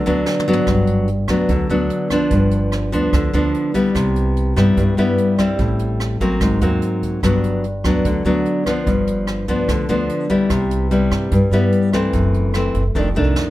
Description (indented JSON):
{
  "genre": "bossa nova",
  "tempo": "147 BPM",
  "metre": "4/4",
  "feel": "straight",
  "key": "G major",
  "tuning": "A4 = 439 Hz",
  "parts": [
    { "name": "nylon-string guitar", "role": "accompaniment", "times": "0.0-13.5 s", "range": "F2 to E4", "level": "-17 LUFS", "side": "left 1 dB", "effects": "none" },
    { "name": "upright bass", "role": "bass", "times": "0.0-13.3 s", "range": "F1 to G2", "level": "-21 LUFS", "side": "right 1 dB", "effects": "none" },
    { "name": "jazz brush drum kit", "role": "drums", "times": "0.1-13.5 s", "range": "hi-hat, kick drum, rim click, snare drum, toms", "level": "-26 LUFS", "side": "right 1 dB", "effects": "none" }
  ],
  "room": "light reverb",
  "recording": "none",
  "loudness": "-15 LUFS",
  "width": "side -15 dB against mid",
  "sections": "0.7-13.5 A section",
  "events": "drum fill 0.3-0.7, 13.0-13.5",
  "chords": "0.0 Gmaj7 (rootless); 0.7 Gmaj7; 2.3 G7; 4.0 Cmaj7; 5.6 Am7; 6.4 Ab9; 7.2 Gmaj7; 8.9 G7; 10.5 Cmaj7; 12.1 F#m7b5; 13.0 F6"
}